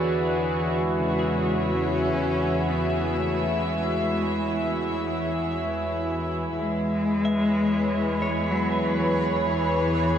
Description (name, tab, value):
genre	ambient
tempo	62 BPM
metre	3/4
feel	straight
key	E mixolydian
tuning	A4 = 440 Hz
part	warm studio string section	sustained chords	0.0-10.2 s	E3 to E5	-25 LUFS	equal	shimmer reverb
part	clean electric guitar	arpeggios	0.0-10.2 s	C#3 to E5	-36 LUFS	equal	diffuse ambient delay
part	dark chamber double bass section	bass	0.0-10.2 s	E2	-33 LUFS	left 1 dB	none
part	analog drone	drone	3.3-10.2 s	E3 to E4	-35 LUFS	right 1 dB	none
part	rich cello	melody	0.8-10.2 s	E3 to C#4	-27 LUFS	left 1 dB	diffuse ambient delay
part	backwards swelling texture	texture	7.4-10.2 s	B5	-32 LUFS	right 3 dB	built-in reverb, shimmer reverb
room	wet huge ambient reverb, RT60 9.3 s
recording	worn, warbling old tape, cassette tape, warbly pitch drift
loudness	-22 LUFS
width	side -9 dB against mid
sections	0.0-10.2 A section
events	fade-in on clean electric guitar 0.0-10.2; fade-in on double bass section 0.0-10.2; fade-in on cello 0.0-10.2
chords	0.0 E13; 6.6 C#m7/E